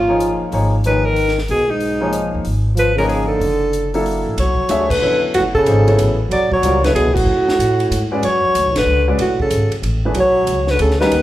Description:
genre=modal jazz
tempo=187 BPM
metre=3/4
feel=swing 64% on 8ths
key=G# dorian, B dorian from 4.4 s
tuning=A4 = 440 Hz
part: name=breathy alto saxophone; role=melody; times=0.0-11.2 s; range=D#4 to D5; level=-17 LUFS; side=equal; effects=none
part: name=mellow trombone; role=second line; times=0.0-11.2 s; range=G#2 to F#3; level=-21 LUFS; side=right 2 dB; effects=none
part: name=upright bass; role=bass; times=0.0-11.2 s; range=F#1 to A2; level=-20 LUFS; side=equal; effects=none
part: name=warm concert grand piano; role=accompaniment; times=0.1-11.1 s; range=E3 to E5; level=-21 LUFS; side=left 1 dB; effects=none
part: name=compact cocktail drum kit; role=drums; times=0.2-11.2 s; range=crash cymbal, hi-hat, kick drum, ride cymbal, snare drum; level=-27 LUFS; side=equal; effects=none
room=moderate recital hall reverb, RT60 1.6 s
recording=recorded in a church or concert hall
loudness=-14 LUFS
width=side -14 dB against mid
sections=0.0-4.4 A section; 4.4-11.2 B section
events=band accent 4.9, 7.1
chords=0.0 A#m/G#; 0.5 G#m69; 2.5 A#m/G#; 3.4 F#7alt; 4.4 Bm9

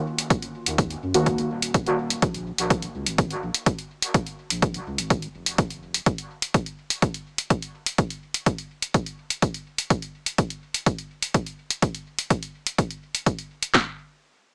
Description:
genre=dub techno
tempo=125 BPM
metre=4/4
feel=straight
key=unclear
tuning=A4 = 440 Hz
part: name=deep mellow chord stab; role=stabs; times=0.0-2.2 s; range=Eb3 to Gb4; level=-26 LUFS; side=equal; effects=chorus, phaser, sidechain pumping, dub echo
part: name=electronic hi-hat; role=drums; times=0.2-13.7 s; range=none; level=-26 LUFS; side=equal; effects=none
part: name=punchy analog drum machine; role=drums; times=0.3-13.9 s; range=handclaps, kick drum, snare drum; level=-21 LUFS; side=equal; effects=none
part: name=soft dub sub bass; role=bass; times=0.7-6.0 s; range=Eb1 to Gb2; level=-33 LUFS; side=equal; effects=sidechain pumping
room=light reverb, digital ambience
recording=small speaker sound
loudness=-23 LUFS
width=side -35 dB against mid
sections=0.0-13.7 A section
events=none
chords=0.0 Ebm; 2.2 Bb5; 6.1 N.C.

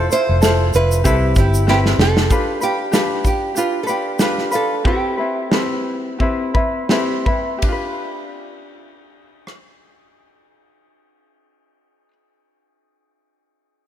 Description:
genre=acoustic pop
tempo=81-96 BPM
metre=4/4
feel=swing 55% on 16ths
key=G mixolydian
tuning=A4 = 439 Hz
part: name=nylon-string guitar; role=melody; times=0.0-6.9 s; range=E4 to C5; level=-22 LUFS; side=right 4 dB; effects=ping-pong delay
part: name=ukulele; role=accompaniment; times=0.0-12.1 s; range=C4 to C5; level=-20 LUFS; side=left 2 dB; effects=slapback echo
part: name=vintage muted fingered electric bass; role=bass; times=0.0-2.3 s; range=F1 to C2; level=-16 LUFS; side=equal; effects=none
part: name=natural country drum kit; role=drums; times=0.1-9.7 s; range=kick drum, ride cymbal, rim click, shaker, snare drum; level=-19 LUFS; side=equal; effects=none
room=moderate lush hall reverb, RT60 2.5 s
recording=big arena sound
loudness=-15 LUFS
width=side -10 dB against mid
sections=0.0-2.3 A section; 2.3-7.6 B section; 7.6-10.6 C section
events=drum fill 1.7-2.3; slowing down 2.3-7.6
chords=0.0 Fmaj7; 1.0 Cmaj7; 2.3 G7; 4.8 Cmaj7; 7.6 G7

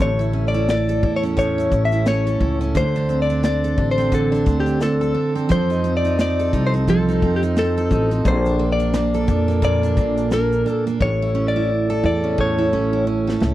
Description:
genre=acoustic pop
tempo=87 BPM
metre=4/4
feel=swing 60% on 16ths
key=unclear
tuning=A4 = 440 Hz
part: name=direct-recorded clean electric guitar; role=melody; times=0.0-13.0 s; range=G4 to E5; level=-22 LUFS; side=left 3 dB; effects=none
part: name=picked steel-string acoustic guitar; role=accompaniment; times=0.0-13.5 s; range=A2 to A4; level=-20 LUFS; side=right 3 dB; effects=none
part: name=upright bass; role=bass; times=0.0-13.5 s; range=A1 to F2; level=-22 LUFS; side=left 1 dB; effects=none
part: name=modern studio drum kit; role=drums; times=0.0-13.5 s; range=kick drum, shaker, snare drum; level=-22 LUFS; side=left 1 dB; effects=none
room=small room ambience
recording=dry, close 1970s-style studio recording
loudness=-17 LUFS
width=side -14 dB against mid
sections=0.0-13.5 A section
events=drum fill 11.0-13.5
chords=0.0 A; 2.8 D5; 5.5 F7; 8.3 Bbmaj7; 11.0 A

